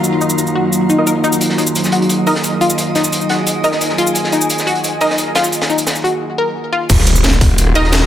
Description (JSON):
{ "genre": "dark technical drum and bass", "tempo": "175 BPM", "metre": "4/4", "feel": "straight", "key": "Eb minor", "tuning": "A4 = 440 Hz", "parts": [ { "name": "metallic inharmonic drone", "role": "sustained chords", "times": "0.0-8.1 s", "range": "Eb3 to Ab4", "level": "-21 LUFS", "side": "right 2 dB", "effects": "chorus, built-in reverb, sidechain pumping" }, { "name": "drum and bass drum kit", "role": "drums", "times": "0.0-8.1 s", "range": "crash cymbal, hi-hat, rim click, shaker, snare drum", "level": "-19 LUFS", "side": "equal", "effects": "overdrive, small room ambience" }, { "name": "ethereal airy pad", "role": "texture", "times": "0.0-6.2 s", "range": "Gb3 to Bb5", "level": "-20 LUFS", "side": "equal", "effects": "ensemble chorus, built-in reverb, tremolo, sidechain pumping" }, { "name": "analog pluck", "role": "arpeggios", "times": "0.2-6.8 s", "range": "Eb4 to Bb4", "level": "-18 LUFS", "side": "left 3 dB", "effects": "chorus, phaser, sidechain pumping, digital delay" }, { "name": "orchestra-hit-like synth stab", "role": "stabs", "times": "1.0-5.1, 7.8 s", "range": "Eb4 to Eb5", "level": "-19 LUFS", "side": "right 1 dB", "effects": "built-in reverb, digital delay" }, { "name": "crunchy breakbeat drum kit", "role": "drums", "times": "1.4-8.0 s", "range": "hi-hat, snare drum", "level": "-22 LUFS", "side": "equal", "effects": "high-pass filter on hats, small room ambience, high-pass filter on snare, high-pass filter on room" }, { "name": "phased detuned saw bass", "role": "bass", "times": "6.9-8.1 s", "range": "Eb1", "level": "-13 LUFS", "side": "equal", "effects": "phaser, overdrive, sidechain pumping" }, { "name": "electronic kick drum", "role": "drums", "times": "6.9-7.5 s", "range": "none", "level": "-12 LUFS", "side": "equal", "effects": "overdrive, small room ambience" }, { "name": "impact", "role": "sound effects", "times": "6.9-8.1 s", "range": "none", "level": "-17 LUFS", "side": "equal", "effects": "none" } ], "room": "moderate lush hall reverb, RT60 2.0 s", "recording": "none", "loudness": "-12 LUFS", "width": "side -11 dB against mid", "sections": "0.0-6.9 A section; 6.9-8.1 B section", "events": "filter sweep on synth stab 0.0-6.9; break 6.2-6.9; drop 6.9-8.1; impact 6.9-8.1", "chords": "0.0 Ebmadd9", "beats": "| 0.04 0.38 0.73 1.07 | 1.41 1.75 2.10 2.44 | 2.78 3.13 3.47 3.81 | 4.15 4.50 4.84 5.18 | 5.53 5.87 6.21 6.55 | 6.90 7.24 7.58 7.93" }